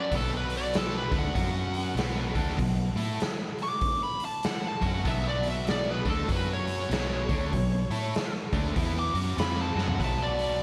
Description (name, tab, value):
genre	blues rock power trio and southern rock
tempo	97 BPM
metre	4/4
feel	swing 62% on 8ths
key	B minor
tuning	A4 = 440 Hz
part	smooth overdriven lead guitar	melody	0.0-10.6 s	A4 to D6	-34 LUFS	equal	slapback echo
part	sludgy distorted guitar	riff	0.0-10.6 s	B2 to A4	-34 LUFS	equal	overdrive
part	vintage muted fingered electric bass	bass	0.1-10.6 s	B1 to A2	-35 LUFS	equal	none
part	raw garage drum kit	drums	0.1-10.5 s	hi-hat, kick drum, snare drum, toms	-33 LUFS	equal	none
room	moderate concert hall reverb, RT60 2.4 s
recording	big arena sound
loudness	-28 LUFS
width	mono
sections	0.0-10.6 A section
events	drum fill 9.7-10.0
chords	0.0 Bm; 1.3 F#5; 2.0 Bm; 6.3 F#5; 6.9 Bm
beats	| 0.11 0.73 1.34 1.96 | 2.58 3.20 3.81 4.43 | 5.05 5.67 6.28 6.90 | 7.52 8.13 8.75 9.37 | 9.99 10.60